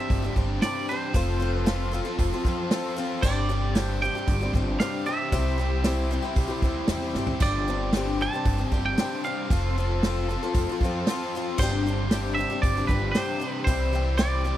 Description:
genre	folk rock and heartland rock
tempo	115 BPM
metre	4/4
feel	straight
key	unclear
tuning	A4 = 440 Hz
part	twangy electric guitar	melody	0.0-14.6 s	B4 to A5	-30 LUFS	right 3 dB	spring reverb
part	picked twelve-string acoustic guitar	accompaniment	0.0-14.6 s	G2 to A4	-30 LUFS	left 5 dB	none
part	tonewheel organ	sustained chords	0.0-14.6 s	C4 to C5	-40 LUFS	right 1 dB	none
part	biting overdriven guitar	riff	0.0-14.6 s	G2 to A4	-32 LUFS	right 1 dB	none
part	upright bass	bass	0.1-14.5 s	F1 to G2	-28 LUFS	equal	none
part	natural country drum kit	drums	0.1-14.3 s	crash cymbal, hi-hat, kick drum, snare drum, toms	-25 LUFS	right 1 dB	none
room	little or no reverb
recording	dry, close 1970s-style studio recording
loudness	-23 LUFS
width	side -12 dB against mid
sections	0.0-14.6 A section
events	drum fill 7.1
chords	0.0 Gsus4; 1.1 F; 3.2 Gsus4; 5.3 C; 7.4 Gsus4; 9.5 F; 11.6 Gsus4; 13.7 C

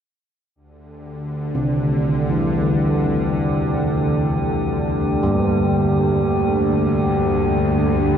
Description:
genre	dark ambient drone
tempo	free time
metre	none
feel	none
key	unclear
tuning	A4 = 440 Hz
part	bowed-like drone	drone	1.0-8.2 s	D2 to D3	-20 LUFS	equal	built-in reverb
part	metallic inharmonic drone	texture	1.8-8.2 s	G4	-25 LUFS	left 1 dB	chorus, built-in reverb
part	carillon bells	arpeggios	1.5-8.2 s	C3 to G3	-21 LUFS	right 1 dB	diffuse ambient delay
room	moderate huge ambient reverb, RT60 8.2 s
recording	dark, warm production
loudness	-17 LUFS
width	side -8 dB against mid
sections	0.6-8.2 A section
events	none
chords	0.6 D5

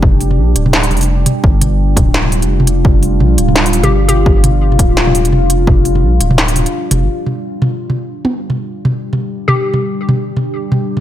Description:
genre	half-time drum and bass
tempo	170 BPM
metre	4/4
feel	swing 58% on 16ths, half-time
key	unclear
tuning	A4 = 442 Hz
part	deep dark ambient pad	sustained chords	0.0-11.0 s	G3 to G4	-18 LUFS	equal	chorus, built-in reverb, sidechain pumping
part	saturated sub bass	bass	0.0-7.1 s	D1 to Bb1	-13 LUFS	equal	none
part	electronic kick drum	drums	0.0-5.8 s	none	-12 LUFS	equal	none
part	industrial drum kit	drums	0.0-11.0 s	hi-hat, snare drum, toms	-15 LUFS	right 1 dB	none
part	hollow square pluck	melody	3.8-4.4, 9.5-9.8 s	G4	-19 LUFS	left 2 dB	chorus, cassette tape, tape echo
room	light reverb, digital ambience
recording	none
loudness	-10 LUFS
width	side -12 dB against mid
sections	0.0-7.1 A section; 7.1-11.0 B section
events	none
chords	0.0 G5

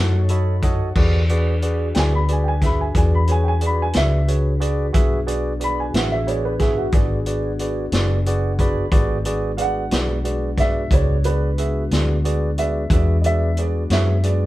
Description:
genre	slow blues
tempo	60 BPM (dotted quarters)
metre	12/8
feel	straight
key	E mixolydian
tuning	A4 = 441 Hz
part	barky tine electric piano	accompaniment	0.0-14.5 s	F#4 to B5	-25 LUFS	right 2 dB	medium stereo tremolo
part	mellow tonewheel organ	sustained chords	0.0-14.5 s	G#3 to C#5	-30 LUFS	left 2 dB	slow rotary speaker
part	vintage muted fingered electric bass	bass	0.0-14.5 s	F#1 to F#2	-20 LUFS	equal	none
part	vintage drum kit	drums	0.3-14.4 s	crash cymbal, hi-hat, kick drum, snare drum	-21 LUFS	equal	none
part	dark upright piano	second line	1.9-14.5 s	F#4 to B5	-25 LUFS	right 1 dB	none
room	light reverb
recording	band playing live in one room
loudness	-17 LUFS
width	side -16 dB against mid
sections	1.0-14.5 A section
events	tine electric piano fill 0.0-1.0, 7.9-8.9; upright piano solo 1.0-14.5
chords	0.0 B9; 1.0 E9

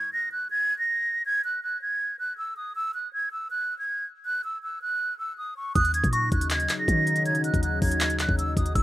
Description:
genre	hip hop, trap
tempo	160 BPM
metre	4/4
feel	half-time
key	Eb phrygian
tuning	A4 = 439 Hz
part	breathy concert flute	melody	0.0-8.8 s	Db6 to Bb6	-26 LUFS	right 2 dB	ping-pong delay
part	delicate synth tine bell	second line	5.8-6.5, 8.8 s	Db6 to E6	-28 LUFS	equal	chorus
part	dark analog pad	sustained chords	5.8-8.8 s	B2 to E4	-31 LUFS	left 2 dB	chorus
part	clean 808-style bass	bass	5.8-8.8 s	E1 to Eb3	-27 LUFS	equal	none
part	trap drum kit	drums	5.8-8.8 s	handclaps, hi-hat, kick drum	-26 LUFS	equal	none
room	light reverb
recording	rough home demo mix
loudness	-24 LUFS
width	side -15 dB against mid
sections	0.0-8.8 A section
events	none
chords	0.0 N.C.; 5.8 Ebm7

